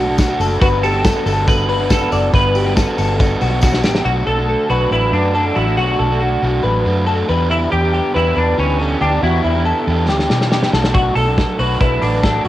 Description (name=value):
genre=jangly indie pop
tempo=139 BPM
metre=4/4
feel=straight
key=B minor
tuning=A4 = 441 Hz
part: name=crunchy overdriven guitar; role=accompaniment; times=0.0-12.5 s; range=B2 to G4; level=-21 LUFS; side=right 3 dB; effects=cassette tape, plate reverb
part: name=direct-recorded clean electric guitar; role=arpeggios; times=0.0-12.5 s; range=E4 to D5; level=-20 LUFS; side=left 3 dB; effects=ensemble chorus, cassette tape, plate reverb
part: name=vintage muted fingered electric bass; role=bass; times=0.0-12.5 s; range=F#1 to B2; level=-19 LUFS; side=equal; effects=none
part: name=loose indie drum kit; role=drums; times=0.2-4.0, 10.1-12.5 s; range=hi-hat, kick drum, snare drum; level=-17 LUFS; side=equal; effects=cassette tape
part: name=tambourine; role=percussion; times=0.2-3.9 s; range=none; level=-34 LUFS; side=left 5 dB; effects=none
part: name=semi-hollow electric guitar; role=melody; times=0.6-12.4 s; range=C#4 to B4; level=-21 LUFS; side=right 1 dB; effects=analog chorus, cassette tape, plate reverb, tape echo
room=light reverb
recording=home recording on cassette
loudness=-13 LUFS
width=side -14 dB against mid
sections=0.0-4.1 A section; 4.1-12.5 B section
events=drum fill 3.6-4.1, 10.1-10.9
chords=0.0 Bm7; 7.3 Em7; 10.7 Bm7